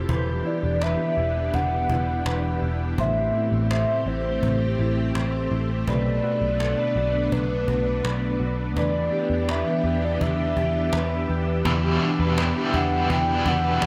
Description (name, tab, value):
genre	dream pop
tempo	83 BPM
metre	4/4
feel	straight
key	E minor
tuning	A4 = 441 Hz
part	string machine, full ensemble	sustained chords	0.0-13.9 s	E3 to G4	-31 LUFS	equal	ensemble chorus
part	mellow electric guitar	arpeggios	0.0-13.9 s	A2 to C5	-31 LUFS	equal	subtle chorus, delay
part	vintage muted picked electric bass	bass	0.0-13.9 s	E1 to E2	-28 LUFS	equal	none
part	cajon	drums	0.1-13.9 s	none	-34 LUFS	equal	none
part	hollow clarinet-like synth lead	melody	0.5-13.9 s	B4 to G5	-30 LUFS	equal	chorus, delay
part	crunchy overdriven guitar	accompaniment	11.7-13.9 s	E2 to E4	-28 LUFS	equal	tremolo, subtle chorus
room	light reverb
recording	none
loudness	-24 LUFS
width	mono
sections	0.0-11.7 A section; 11.7-13.9 B section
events	none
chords	0.1 Em7; 3.0 Am7; 5.9 Bm7; 8.8 Em7